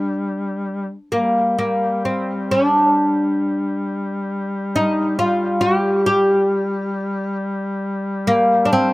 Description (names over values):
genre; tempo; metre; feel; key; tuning
caucasian folk, Caucasian lament; 63-70 BPM; 4/4; rubato; G minor; A4 = 440 Hz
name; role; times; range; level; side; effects
oud; melody; 0.0-8.9 s; Bb3 to G4; -17 LUFS; equal; slapback echo
warm duduk; drone; 0.0-8.9 s; G3; -24 LUFS; left 1 dB; none
room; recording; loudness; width
little or no reverb; recorded outdoors, with no room sound; -17 LUFS; side -19 dB against mid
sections
0.0-8.9 A section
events
none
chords
none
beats
0.18 | 1.12 2.04 2.96 3.87 | 4.77 5.64 6.52 7.41 | 8.28